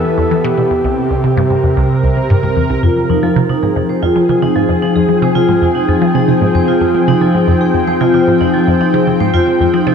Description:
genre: ambient, sequencer-driven space music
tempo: 113 BPM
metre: 4/4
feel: straight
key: F minor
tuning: A4 = 439 Hz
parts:
  - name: breathy flute-like synth lead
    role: melody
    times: 0.0-2.6 s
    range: G4 to A4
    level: -19 LUFS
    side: right 1 dB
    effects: chorus, analog delay
  - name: lush unison pad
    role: sustained chords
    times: 0.0-9.9 s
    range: C3 to G5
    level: -14 LUFS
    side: left 2 dB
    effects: chorus
  - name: resonant blip pluck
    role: riff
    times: 0.2-9.9 s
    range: C2 to F3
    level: -16 LUFS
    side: equal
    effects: phaser, analog delay
  - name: vibraphone with hard mallets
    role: arpeggios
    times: 2.8-9.9 s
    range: F3 to C5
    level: -15 LUFS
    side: right 2 dB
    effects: auto-pan, low-pass filter, analog delay
room: wet plate reverb, RT60 3.4 s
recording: dark, warm production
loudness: -10 LUFS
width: side -6 dB against mid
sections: 0.0-2.8 A section; 2.8-9.9 B section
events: none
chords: 0.0 Em; 0.7 C7; 2.8 Fmadd9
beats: 0.18 | 0.71 1.24 1.77 2.30 | 2.83 3.36 3.89 4.42 | 4.96 5.49 6.02 6.55 | 7.08 7.61 8.14 8.67 | 9.20 9.73

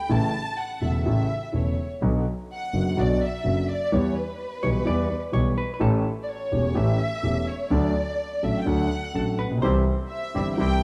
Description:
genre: tango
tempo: 126 BPM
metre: 4/4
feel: rubato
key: unclear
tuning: A4 = 440 Hz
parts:
  - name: warm studio violin section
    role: second line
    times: 0.0-10.8 s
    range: B4 to A5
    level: -32 LUFS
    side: equal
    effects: none
  - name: warm concert grand piano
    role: accompaniment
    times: 0.1-10.8 s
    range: E1 to A4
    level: -27 LUFS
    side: equal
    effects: none
  - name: warm double bass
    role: bass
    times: 0.1-10.8 s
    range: E1 to E2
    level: -29 LUFS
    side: equal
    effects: none
  - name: vintage hollow-body jazz guitar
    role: second line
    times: 4.6-6.1, 9.2-10.0 s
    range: A4 to D5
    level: -34 LUFS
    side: equal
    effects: none
  - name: bandoneon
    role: stabs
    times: 9.6-10.8 s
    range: G3 to E4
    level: -36 LUFS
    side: equal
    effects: none
room: moderate plate reverb, RT60 2.8 s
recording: heard from further back in the room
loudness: -25 LUFS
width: mono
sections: 0.0-10.8 A section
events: violin section solo 0.0-10.8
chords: 0.1 A; 2.0 Bm; 3.9 Em; 5.8 A7; 7.7 D; 9.6 C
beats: | 0.09 0.57 1.05 1.53 | 2.02 2.50 2.98 3.46 | 3.93 4.41 4.88 5.35 | 5.82 6.30 6.77 7.25 | 7.72 8.20 8.67 9.15 | 9.63 10.11 10.59

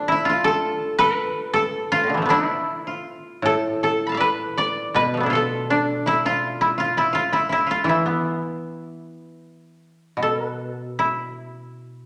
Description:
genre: japanese traditional, Japanese chamber music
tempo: 75-86 BPM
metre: 2/4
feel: rubato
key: E in sen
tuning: A4 = 440 Hz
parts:
  - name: koto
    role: melody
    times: 0.0-12.1 s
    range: A2 to B5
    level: -23 LUFS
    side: equal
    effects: none
  - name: koto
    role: second line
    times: 0.0-10.1 s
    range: D4 to A5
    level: -28 LUFS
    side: equal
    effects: none
  - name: koto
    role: accompaniment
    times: 3.4-12.1 s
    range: A2 to B3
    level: -29 LUFS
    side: equal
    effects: none
room: wet recital hall reverb, RT60 1.4 s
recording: none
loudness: -22 LUFS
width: mono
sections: 0.0-9.4 A section; 9.4-12.1 B section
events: none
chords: none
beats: | 0.48 1.19 | 1.94 2.69 | 3.45 4.21 | 4.96 5.70 | 6.42 7.13 | 7.86 8.62 | 9.42 10.20 | 10.97 11.72

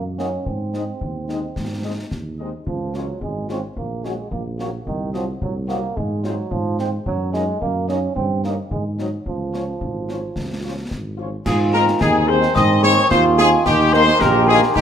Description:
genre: military-style march for wind band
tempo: 109 BPM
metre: 2/4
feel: straight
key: Db major, Ab major from 11.5 s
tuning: A4 = 440 Hz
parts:
  - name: clear euphonium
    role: second line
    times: 0.0-14.8 s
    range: Eb3 to G4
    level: -24 LUFS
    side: right 4 dB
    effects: none
  - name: dark tuba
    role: bass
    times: 0.0-14.8 s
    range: Ab1 to Ab2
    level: -23 LUFS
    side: right 2 dB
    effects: none
  - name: dark trumpet section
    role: melody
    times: 0.2-14.8 s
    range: G4 to Eb5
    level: -20 LUFS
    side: left 1 dB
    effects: none
  - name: warm French horn section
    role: accompaniment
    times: 0.2-14.6 s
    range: F3 to Bb4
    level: -26 LUFS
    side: left 4 dB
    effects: none
  - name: concert snare drum, concert bass drum and clash cymbals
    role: drums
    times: 0.2-14.8 s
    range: none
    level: -28 LUFS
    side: left 1 dB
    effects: none
  - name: glockenspiel with rubber mallets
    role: second line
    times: 11.5-14.8 s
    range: G5 to Eb6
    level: -22 LUFS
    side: left 9 dB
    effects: none
  - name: mellow hollow wooden piccolo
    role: second line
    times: 11.5-14.8 s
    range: G5 to Eb6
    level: -23 LUFS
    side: left 3 dB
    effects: none
  - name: mellow trombone section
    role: sustained chords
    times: 11.5-14.8 s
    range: Eb3 to C4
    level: -25 LUFS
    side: right 1 dB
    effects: none
room: wet large studio reverb, RT60 1.1 s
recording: none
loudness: -17 LUFS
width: side -8 dB against mid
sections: 0.0-11.5 A section; 11.5-14.8 B section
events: none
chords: 0.5 Ab; 2.7 Db; 3.8 Gb/Bb; 4.9 Cdim; 6.0 Fm/Ab; 7.1 Ebm7/Gb; 8.2 Eb7/G; 8.7 Ab7; 9.3 Db; 11.5 Ab; 13.7 Eb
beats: | 0.46 1.01 | 1.56 2.11 | 2.66 3.21 | 3.76 4.31 | 4.86 5.41 | 5.96 6.51 | 7.06 7.61 | 8.16 8.71 | 9.26 9.81 | 10.36 10.91 | 11.46 12.01 | 12.56 13.11 | 13.66 14.21 | 14.76

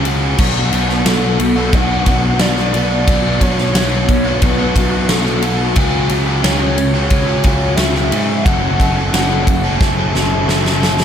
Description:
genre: rock, shoegaze and dream pop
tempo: 89 BPM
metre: 4/4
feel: straight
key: unclear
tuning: A4 = 440 Hz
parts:
  - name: biting overdriven guitar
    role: riff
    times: 0.0-11.0 s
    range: F#2 to A4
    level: -17 LUFS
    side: equal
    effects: wide subtle chorus
  - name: fuzz picked electric bass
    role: bass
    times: 0.0-11.0 s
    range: F#1 to G#2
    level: -18 LUFS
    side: equal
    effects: overdrive
  - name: huge arena drum kit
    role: drums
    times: 0.1-11.0 s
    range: crash cymbal, kick drum, ride cymbal, snare drum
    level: -17 LUFS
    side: equal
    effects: none
  - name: pure sine lead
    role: melody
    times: 1.1-9.8 s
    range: A4 to F#5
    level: -22 LUFS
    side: equal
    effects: chorus, digital delay
room: light reverb, small room ambience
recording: none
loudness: -12 LUFS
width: side -8 dB against mid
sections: 0.0-11.0 A section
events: drum fill 9.8-11.0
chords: 0.4 Bm7; 5.8 C#sus4; 8.5 F#m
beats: | 0.39 1.06 1.73 2.40 | 3.07 3.75 4.42 5.09 | 5.76 6.44 7.11 7.78 | 8.46 9.13 9.80 10.47

